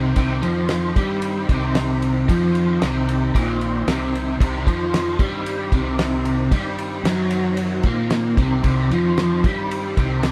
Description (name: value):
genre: psychedelic rock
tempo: 113 BPM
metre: 4/4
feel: straight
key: C minor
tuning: A4 = 438 Hz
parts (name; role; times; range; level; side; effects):
- bright tonewheel organ; sustained chords; 0.0-10.3 s; Eb3 to G5; -32 LUFS; equal; slow rotary speaker, chorus vibrato
- overdriven electric guitar; riff; 0.0-10.3 s; Bb2 to Bb3; -24 LUFS; equal; rotary speaker
- fuzz fingered electric bass; bass; 0.0-10.3 s; Bb1 to Bb2; -27 LUFS; equal; overdrive
- damped 70s drum kit; drums; 0.2-10.3 s; kick drum, ride cymbal, snare drum; -26 LUFS; equal; none
room: moderate studio reverb, RT60 0.7 s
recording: band playing live in one room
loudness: -20 LUFS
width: mono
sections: 0.0-10.3 A section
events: none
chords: 0.0 Cm